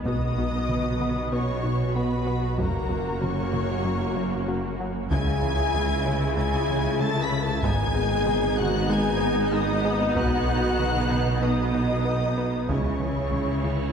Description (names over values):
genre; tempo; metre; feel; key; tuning
cinematic, hybrid orchestral and electronic film score; 95 BPM; 4/4; straight; C# minor; A4 = 439 Hz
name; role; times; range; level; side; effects
warm symphonic viola section; accompaniment; 0.0-13.9 s; G#3 to F#4; -31 LUFS; right 1 dB; none
hollow soft pad; sustained chords; 0.0-13.9 s; F#3 to F#5; -37 LUFS; right 1 dB; none
dark tuba; bass; 0.0-13.9 s; F#1 to C#2; -32 LUFS; right 1 dB; none
punchy sub bass; bass; 0.0-13.9 s; F#1 to C#2; -35 LUFS; equal; none
rich symphonic cello section; bass; 0.0-13.9 s; F#2 to C#3; -33 LUFS; right 2 dB; none
rich symphonic double bass section; bass; 0.0-13.9 s; F#1 to C#2; -32 LUFS; right 3 dB; none
dark symphonic violin section; melody; 0.1-13.9 s; A#5 to B6; -34 LUFS; left 4 dB; none
rich symphonic violin section; second line; 0.1-13.9 s; A#4 to B5; -33 LUFS; left 3 dB; none
dark French horn section; sustained chords; 0.1-13.9 s; A#3 to B4; -31 LUFS; left 2 dB; none
thumb-piano-like synth pluck; arpeggios; 0.1-13.5 s; C#3 to B4; -37 LUFS; right 2 dB; none
plucky analog bass; riff; 0.1-13.8 s; C#2 to B3; -31 LUFS; left 2 dB; none
taiko ensemble; drums; 0.1-13.9 s; none; -32 LUFS; equal; none
reverse cymbal; sound effects; 13.2-13.9 s; none; -44 LUFS; right 6 dB; none
room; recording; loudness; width
wet scoring stage reverb, RT60 1.7 s; heard from further back in the room; -22 LUFS; side -7 dB against mid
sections
0.0-13.9 A section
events
reverse cymbal 13.2-13.9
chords
0.1 B; 2.6 F#; 5.1 C#m; 7.6 G#m; 10.2 B; 12.7 C#m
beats
| 0.06 0.69 1.33 1.96 | 2.59 3.22 3.85 4.48 | 5.12 5.75 6.38 7.01 | 7.64 8.27 8.90 9.54 | 10.17 10.80 11.43 12.06 | 12.69 13.33